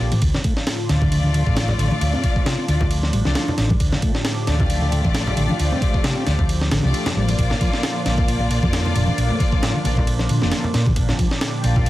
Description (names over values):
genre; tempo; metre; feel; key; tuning
breakbeat, breaks; 134 BPM; 4/4; swing 55% on 16ths; D minor; A4 = 440 Hz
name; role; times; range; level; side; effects
phased analog pad; sustained chords; 0.0-11.9 s; A2 to G4; -27 LUFS; equal; phaser, chorus, sidechain pumping
hollow-body short-scale fingered electric bass; bass; 0.0-11.9 s; F1 to Bb2; -21 LUFS; equal; tube saturation
mellow tonewheel organ; riff; 0.1-11.9 s; A2 to D4; -25 LUFS; equal; chorus vibrato, stopped rotary speaker, tube saturation, digital delay
breakbeat sampler-style drum kit; drums; 0.1-11.9 s; kick drum, ride cymbal, snare drum; -22 LUFS; equal; none
congas; percussion; 0.1-11.8 s; none; -27 LUFS; left 1 dB; none
warm studio string section; stabs; 0.9-11.9 s; A3 to D5; -26 LUFS; left 3 dB; digital delay
room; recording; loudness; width
light reverb; dense, heavily limited modern master, vinyl crackle; -17 LUFS; side -16 dB against mid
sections
0.0-11.9 A section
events
none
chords
0.2 Dm; 7.4 Bb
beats
| 0.22 0.67 1.12 1.57 | 2.01 2.46 2.91 3.36 | 3.81 4.25 4.70 5.15 | 5.60 6.04 6.49 6.94 | 7.39 7.83 8.28 8.73 | 9.18 9.63 10.07 10.52 | 10.97 11.42 11.87